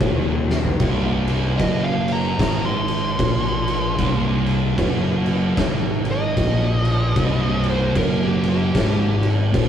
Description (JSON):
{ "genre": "stoner and doom metal", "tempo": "75 BPM", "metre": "4/4", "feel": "swing 60% on 8ths", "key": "unclear", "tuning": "A4 = 436 Hz", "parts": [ { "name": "thick fuzz guitar", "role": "riff", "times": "0.0-9.7 s", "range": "C2 to Bb2", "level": "-26 LUFS", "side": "left 6 dB", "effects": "distortion" }, { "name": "thick fuzz guitar", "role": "riff", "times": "0.0-9.7 s", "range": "C2 to Bb2", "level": "-24 LUFS", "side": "right 5 dB", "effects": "distortion" }, { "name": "fuzz fingered electric bass", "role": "bass", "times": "0.0-9.7 s", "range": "C1 to Bb1", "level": "-24 LUFS", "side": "equal", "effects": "overdrive" }, { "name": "oversized low-tuned drum kit", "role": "drums", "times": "0.0-9.7 s", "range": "crash cymbal, kick drum, snare drum, toms", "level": "-22 LUFS", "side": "equal", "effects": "none" }, { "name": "fuzz lead guitar", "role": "melody", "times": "1.6-9.3 s", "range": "G4 to C6", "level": "-26 LUFS", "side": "equal", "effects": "distortion" } ], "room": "light reverb", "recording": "rough rehearsal-room recording", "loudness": "-17 LUFS", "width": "side -9 dB against mid", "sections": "0.8-9.7 A section", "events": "drum fill 0.4-0.8; lead electric guitar solo 0.8-9.7", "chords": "0.0 N.C.; 0.8 Cm" }